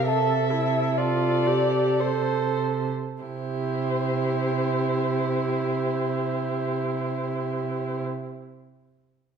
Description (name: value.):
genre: classical, slow romantic movement for string quartet.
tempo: free time.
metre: none.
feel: none.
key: C major.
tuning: A4 = 440 Hz.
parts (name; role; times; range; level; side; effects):
muted violin; melody; 0.0-8.0 s; C5 to E5; -30 LUFS; left 3 dB; none.
muted violin; second line; 0.0-8.0 s; G4 to C5; -31 LUFS; left 1 dB; none.
muted viola; accompaniment; 0.0-8.0 s; E4 to A4; -28 LUFS; right 3 dB; none.
muted cello; bass; 0.0-8.0 s; C3; -28 LUFS; right 4 dB; none.
room: wet stone room reverb, RT60 1.4 s.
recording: minimal, uncompressed stereo recording.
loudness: -23 LUFS.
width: side -7 dB against mid.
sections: 0.0-3.2 A section; 3.2-9.4 B section.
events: slowing down 0.0-3.2.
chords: 0.1 F/C; 3.2 C.